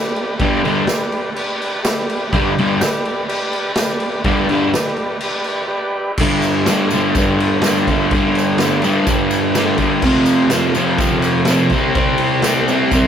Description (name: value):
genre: garage rock duo or trio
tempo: 125 BPM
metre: 4/4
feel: straight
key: G mixolydian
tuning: A4 = 439 Hz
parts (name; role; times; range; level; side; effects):
- combo organ; sustained chords; 0.0-6.1 s; G4 to D5; -23 LUFS; right 1 dB; none
- raw garage drum kit; drums; 0.2-13.0 s; crash cymbal, kick drum, ride cymbal, snare drum; -20 LUFS; equal; none
- crunchy overdriven guitar; riff; 0.4-13.1 s; F2 to C4; -14 LUFS; equal; none
- tambourine; percussion; 0.9-13.0 s; none; -31 LUFS; right 5 dB; none
room: moderate studio reverb, RT60 0.5 s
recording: rough rehearsal-room recording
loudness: -14 LUFS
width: side -8 dB against mid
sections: 0.0-6.2 A section; 6.2-13.1 B section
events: none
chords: 0.0 G; 6.2 G5; 10.0 F5; 11.7 C5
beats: | 0.41 0.89 1.37 1.85 | 2.34 2.82 3.30 3.78 | 4.26 4.74 5.22 5.71 | 6.19 6.67 7.15 7.63 | 8.11 8.59 9.07 9.55 | 10.03 10.52 11.00 11.48 | 11.96 12.44 12.92